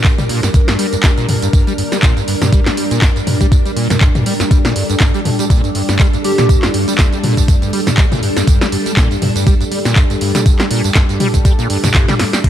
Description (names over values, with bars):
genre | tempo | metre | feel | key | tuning
acid house | 121 BPM | 4/4 | swing 56% on 16ths | unclear | A4 = 440 Hz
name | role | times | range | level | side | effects
string machine, full ensemble | sustained chords | 0.0-12.5 s | G3 to Bb4 | -19 LUFS | equal | ensemble chorus, sidechain pumping
liquid acid bass | riff | 0.0-12.5 s | G2 to G3 | -18 LUFS | equal | tube saturation, analog chorus, tape echo
electronic kick drum | drums | 0.0-12.5 s | none | -12 LUFS | equal | overdrive
punchy analog drum machine | drums | 0.0-12.5 s | crash cymbal, handclaps, hi-hat, snare drum, tambourine, toms | -18 LUFS | equal | none
plucky unison lead | melody | 6.2-6.7 s | G4 | -20 LUFS | right 2 dB | tape echo
room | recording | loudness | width
little or no reverb | none | -11 LUFS | side -11 dB against mid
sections
0.0-12.4 A section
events
drop 0.0-12.4; drum fill 11.9-12.4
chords
0.0 Gm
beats
0.05 | 0.54 1.04 1.53 2.03 | 2.53 3.02 3.52 4.01 | 4.51 5.00 5.50 6.00 | 6.49 6.99 7.48 7.98 | 8.48 8.97 9.47 9.96 | 10.46 10.96 11.45 11.95 | 12.44